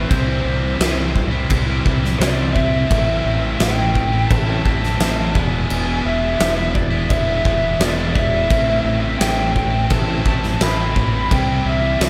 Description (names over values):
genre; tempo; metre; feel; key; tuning
quiet-loud alternative rock; 86 BPM; 4/4; straight; A minor; A4 = 440 Hz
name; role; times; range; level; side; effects
lead guitar through a small cranked amp; melody; 0.0-12.1 s; C5 to B5; -25 LUFS; equal; overdrive, slapback echo
high-gain distorted guitar; riff; 0.0-12.1 s; A2 to E4; -31 LUFS; equal; none
scooped high-gain guitar; riff; 0.0-12.1 s; A2 to E4; -29 LUFS; equal; distortion
thick fuzz guitar; riff; 0.0-12.1 s; A2 to E4; -28 LUFS; equal; distortion, slapback echo
growling fingered electric bass; bass; 0.0-12.1 s; E1 to C2; -24 LUFS; equal; overdrive
huge arena drum kit; drums; 0.1-12.1 s; crash cymbal, kick drum, snare drum; -22 LUFS; equal; none
room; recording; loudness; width
light reverb, small room ambience; none; -18 LUFS; mono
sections
0.0-12.1 A section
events
none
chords
0.1 C; 2.9 Am; 5.3 E; 8.5 Amadd9; 11.3 C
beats
| 0.09 0.79 1.49 2.19 | 2.89 3.59 4.29 5.00 | 5.70 6.40 7.10 7.80 | 8.51 9.21 9.91 10.61 | 11.31 12.02